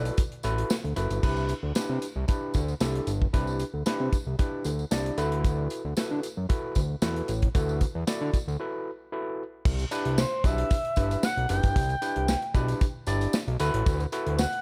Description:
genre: early-eighties boogie funk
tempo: 114 BPM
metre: 4/4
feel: straight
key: unclear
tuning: A4 = 442 Hz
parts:
  - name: expressive portamento lead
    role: melody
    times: 0.0-0.7, 10.2-14.6 s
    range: C5 to G5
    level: -32 LUFS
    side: equal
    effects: chorus
  - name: overdriven tine electric piano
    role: accompaniment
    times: 0.0-14.4 s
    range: D4 to D5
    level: -34 LUFS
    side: equal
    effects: none
  - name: fat analog bass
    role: bass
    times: 0.0-14.5 s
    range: F#1 to D3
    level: -31 LUFS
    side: equal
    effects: none
  - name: modern studio drum kit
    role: drums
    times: 0.1-14.6 s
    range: crash cymbal, hi-hat, kick drum, snare drum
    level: -30 LUFS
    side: equal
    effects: none
  - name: tambourine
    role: percussion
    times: 0.1-14.5 s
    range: none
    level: -44 LUFS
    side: equal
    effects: none
room: small room ambience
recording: faint mains hum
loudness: -28 LUFS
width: mono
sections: 0.0-1.2 A section; 1.2-9.7 B section; 9.7-14.6 A section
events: break 8.6-9.7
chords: 0.0 D69; 1.2 Cmaj9; 5.2 D69; 9.7 Cmaj9; 13.6 D69

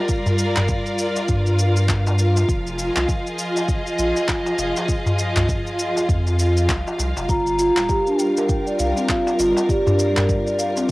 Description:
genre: organic downtempo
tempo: 100 BPM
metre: 4/4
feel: swing 59% on 16ths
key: unclear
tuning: A4 = 440 Hz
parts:
  - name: rich symphonic string section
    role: sustained chords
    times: 0.0-10.9 s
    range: F3 to F5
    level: -23 LUFS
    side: equal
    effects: sidechain pumping, cassette tape
  - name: electronic kick drum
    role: drums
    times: 0.1-10.9 s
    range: none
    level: -23 LUFS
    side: equal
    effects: cassette tape
  - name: electronic shaker and handclaps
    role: drums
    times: 0.1-10.9 s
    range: none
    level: -27 LUFS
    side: equal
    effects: cassette tape
  - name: darbuka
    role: percussion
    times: 0.3-10.9 s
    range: none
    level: -25 LUFS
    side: equal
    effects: none
  - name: round analog bass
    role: bass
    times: 0.6-10.3 s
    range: D1 to G2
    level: -21 LUFS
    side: equal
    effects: sidechain pumping
  - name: mellow bass bansuri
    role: melody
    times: 7.3-10.9 s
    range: D5 to Bb5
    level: -27 LUFS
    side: left 1 dB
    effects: cassette tape, tape echo
  - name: marimba with medium mallets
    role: arpeggios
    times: 7.3-10.9 s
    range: C4 to F5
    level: -19 LUFS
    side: right 1 dB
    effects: cassette tape
room: wet booth ambience, RT60 0.2 s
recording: home recording on cassette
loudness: -18 LUFS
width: side -20 dB against mid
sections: 0.0-10.9 A section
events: none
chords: 0.0 Gm7; 2.5 Fm7; 7.3 Gm7

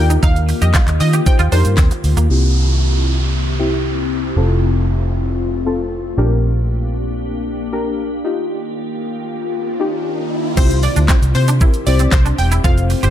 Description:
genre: dance-pop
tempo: 116 BPM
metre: 4/4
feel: straight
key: unclear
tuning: A4 = 440 Hz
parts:
  - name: analog pluck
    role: melody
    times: 0.0-1.6, 10.6-13.1 s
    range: C5 to G5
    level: -24 LUFS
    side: equal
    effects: chorus, ping-pong delay
  - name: deep mellow chord stab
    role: accompaniment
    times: 0.0-13.1 s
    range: C4 to C5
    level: -23 LUFS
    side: left 3 dB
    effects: chorus, sidechain pumping, low-pass filter
  - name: glassy FM pad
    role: sustained chords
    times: 0.0-13.1 s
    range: C3 to G4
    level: -23 LUFS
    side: left 2 dB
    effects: ensemble chorus, built-in reverb, sidechain pumping, low-pass filter
  - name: vintage muted fingered electric bass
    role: bass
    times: 0.0-13.1 s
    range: E1 to Eb3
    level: -16 LUFS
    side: equal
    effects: sidechain pumping
  - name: twangy electric guitar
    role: riff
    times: 0.1-2.3, 10.6-13.1 s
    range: Bb3 to G4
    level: -25 LUFS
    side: right 4 dB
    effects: ensemble chorus
  - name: pop drum kit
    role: drums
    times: 0.1-2.3, 10.6-13.1 s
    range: crash cymbal, handclaps, hi-hat, kick drum, shaker, snare drum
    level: -16 LUFS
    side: equal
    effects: none
  - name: group handclap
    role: percussion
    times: 0.7-1.9, 11.1-12.2 s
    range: none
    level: -33 LUFS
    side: left 12 dB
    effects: none
  - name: downlifter and riser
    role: sound effects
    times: 2.3-10.6 s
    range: none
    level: -27 LUFS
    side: equal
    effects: none
room: light reverb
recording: none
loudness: -14 LUFS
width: side -11 dB against mid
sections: 0.0-2.3 A section; 2.3-10.6 B section; 10.6-13.1 A section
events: drop 0.0-2.3, 10.6-13.1; filter sweep 2.3-10.6; riser 9.4-10.6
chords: 0.0 Ebadd9; 2.3 C; 4.4 F; 6.2 Bb6; 8.2 Ebadd9; 10.6 C

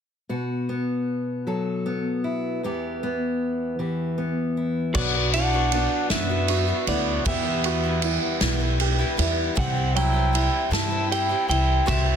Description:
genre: indie folk with a building arrangement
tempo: 52 BPM (dotted quarters)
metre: 6/8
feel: straight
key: unclear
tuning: A4 = 439 Hz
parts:
  - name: fingerpicked steel-string acoustic guitar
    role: accompaniment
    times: 0.3-5.0 s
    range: E2 to A4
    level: -25 LUFS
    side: left 1 dB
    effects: none
  - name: electric guitar at the edge of break-up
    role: melody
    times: 4.9-12.2 s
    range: D5 to A5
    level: -27 LUFS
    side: right 3 dB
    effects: harmonic tremolo
  - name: picked twelve-string acoustic guitar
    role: accompaniment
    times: 4.9-12.2 s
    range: E2 to F#4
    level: -30 LUFS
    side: left 7 dB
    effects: none
  - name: warm upright piano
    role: arpeggios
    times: 4.9-12.2 s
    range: F#3 to G4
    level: -30 LUFS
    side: right 9 dB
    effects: none
  - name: upright bass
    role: bass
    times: 4.9-12.2 s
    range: B1 to G2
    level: -25 LUFS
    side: equal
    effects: none
  - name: unplugged drum kit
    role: drums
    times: 4.9-12.1 s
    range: crash cymbal, kick drum, ride cymbal, snare drum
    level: -26 LUFS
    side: right 2 dB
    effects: none
  - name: warm trumpet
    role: second line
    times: 5.0-12.2 s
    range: B3 to E4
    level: -32 LUFS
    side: left 7 dB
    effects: none
room: light reverb, studio ambience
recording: dense, heavily limited modern master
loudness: -21 LUFS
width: side -8 dB against mid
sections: 0.3-4.9 A section; 4.9-12.2 B section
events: none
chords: 0.3 B5; 2.6 Em; 4.9 Bm; 7.3 Em; 9.6 C

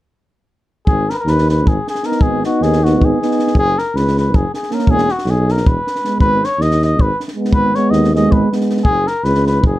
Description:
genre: balkan folk, Balkan brass band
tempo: 316 BPM (eighths)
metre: 7/8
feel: straight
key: G# minor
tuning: A4 = 440 Hz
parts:
  - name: cornet with cup mute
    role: melody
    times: 0.9-9.8 s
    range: F#4 to D#5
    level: -18 LUFS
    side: left 1 dB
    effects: none
  - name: mellow tuba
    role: bass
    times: 0.9-9.7 s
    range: E1 to D#2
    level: -16 LUFS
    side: equal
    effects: none
  - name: compact cocktail drum kit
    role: percussion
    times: 0.9-9.7 s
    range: kick drum, snare drum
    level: -18 LUFS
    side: equal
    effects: none
  - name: mellow euphonium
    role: accompaniment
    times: 2.0-8.8 s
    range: G#3 to B3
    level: -18 LUFS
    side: right 5 dB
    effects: none
  - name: warm euphonium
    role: accompaniment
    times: 2.0-8.8 s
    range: B3 to D#4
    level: -20 LUFS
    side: left 5 dB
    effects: none
room: light reverb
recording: close, detailed microphones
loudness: -13 LUFS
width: side -15 dB against mid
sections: 0.9-9.8 A section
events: none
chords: 0.9 G#m; 3.5 F#; 4.9 E; 6.2 G#m; 8.8 F#5

